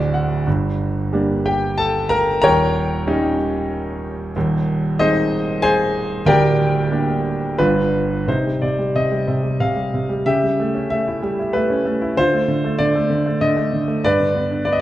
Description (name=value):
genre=classical, lyrical solo piano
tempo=93 BPM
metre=3/4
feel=rubato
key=G minor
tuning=A4 = 442 Hz
part: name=clear concert grand piano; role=solo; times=0.0-14.8 s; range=D1 to Bb5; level=-16 LUFS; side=equal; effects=none
room=moderate recital hall reverb, RT60 1.5 s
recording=none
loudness=-16 LUFS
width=side -14 dB against mid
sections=0.0-8.3 A section; 8.3-14.8 B section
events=grand piano fill 0.0-0.5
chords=0.5 Gm; 2.4 Eb7; 4.4 Ab/Eb; 6.2 Gm/D; 7.6 G7; 8.3 Cm; 10.2 A7/C#; 12.2 Dm; 14.0 G